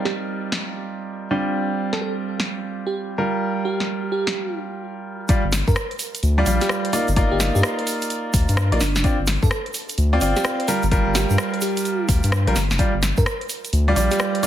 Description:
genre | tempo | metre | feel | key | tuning
UK garage, two-step garage | 128 BPM | 4/4 | swing 65% on 16ths | G minor | A4 = 440 Hz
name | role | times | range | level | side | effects
clear baby grand piano | stabs | 0.0-14.5 s | G3 to D5 | -23 LUFS | right 1 dB | tape echo
bell-like FM electric piano | melody | 0.1-14.2 s | D4 to Bb4 | -28 LUFS | right 2 dB | chorus, tremolo, tape echo
house drum kit | drums | 0.1-14.5 s | hi-hat, rim click, snare drum | -26 LUFS | equal | none
electronic kick drum | drums | 5.3-13.2 s | none | -20 LUFS | left 1 dB | none
egg shaker | percussion | 5.3-14.5 s | none | -32 LUFS | right 4 dB | none
saturated sub bass | bass | 5.4-14.1 s | F1 to G2 | -20 LUFS | left 1 dB | tube saturation
room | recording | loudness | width
light reverb, digital ambience | heavily compressed radio sound | -19 LUFS | side -11 dB against mid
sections
0.0-5.3 A section; 5.3-14.5 B section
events
drop 5.3-14.5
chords
0.0 Cm11/G; 1.3 Dm7/G; 3.2 Gm7; 5.3 G7(no3); 6.9 Ebmaj9/G; 8.8 Dm7; 10.7 Gm7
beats
0.13 0.60 1.07 | 1.54 2.01 2.48 2.95 | 3.42 3.88 4.35 4.82 | 5.29 5.76 6.23 6.70 | 7.17 7.63 8.10 8.57 | 9.04 9.51 9.98 10.45 | 10.91 11.38 11.85 12.32 | 12.79 13.26 13.73 14.20

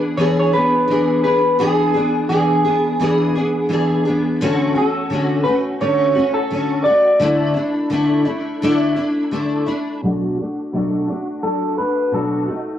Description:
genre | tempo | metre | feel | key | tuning
indie pop | 86 BPM | 4/4 | swing 55% on 16ths | unclear | A4 = 441 Hz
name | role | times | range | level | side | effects
picked steel-string acoustic guitar | accompaniment | 0.0-12.8 s | B2 to G#4 | -18 LUFS | left 1 dB | ensemble chorus, vibrato effect, low-pass filter
electric guitar through a small old amp | melody | 0.2-12.8 s | G#4 to D5 | -18 LUFS | equal | wide subtle chorus, low-pass filter, analog delay
room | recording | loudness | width
wet studio reverb, RT60 0.6 s | worn, warbling old tape, cassette tape, warbly pitch drift | -15 LUFS | side -10 dB against mid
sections
0.0-10.0 A section; 10.0-12.8 B section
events
none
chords
0.0 E7; 4.4 Dmaj7; 7.2 Dsus2; 10.0 Bm7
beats
0.19 0.90 | 1.60 2.30 3.00 3.70 | 4.40 5.10 5.81 6.51 | 7.21 7.91 8.61 9.31 | 10.02 10.72 11.43 12.13

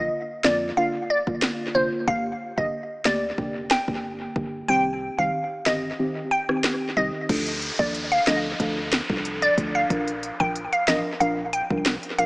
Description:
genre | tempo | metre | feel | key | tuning
dancehall | 92 BPM | 4/4 | straight | D phrygian | A4 = 440 Hz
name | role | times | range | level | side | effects
glassy wavetable pluck | melody | 0.0-12.3 s | C5 to G5 | -24 LUFS | equal | chorus, analog delay
deep mellow chord stab | accompaniment | 0.0-12.3 s | D3 to Bb4 | -28 LUFS | equal | chorus, sidechain pumping, analog delay
organ-like FM bass | bass | 0.0-12.3 s | F1 to F2 | -34 LUFS | equal | none
afro-pop drum kit | drums | 0.4-12.3 s | crash cymbal, hi-hat, kick drum, rim click, snare drum | -27 LUFS | equal | analog delay
downlifter | sound effects | 7.3-12.3 s | none | -32 LUFS | equal | none
room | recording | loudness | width
moderate echo chamber reverb, RT60 2.5 s | echo-heavy mix, small speaker sound | -22 LUFS | side -25 dB against mid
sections
0.0-7.3 A section; 7.3-12.3 B section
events
kick muted 4.7-7.3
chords
0.0 Bb; 2.1 Gm; 4.7 Cm; 7.3 Dm; 9.9 Bb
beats
0.12 0.77 1.42 | 2.08 2.73 3.38 4.03 | 4.68 5.34 5.99 6.64 | 7.29 7.95 8.60 9.25 | 9.90 10.55 11.21 11.86

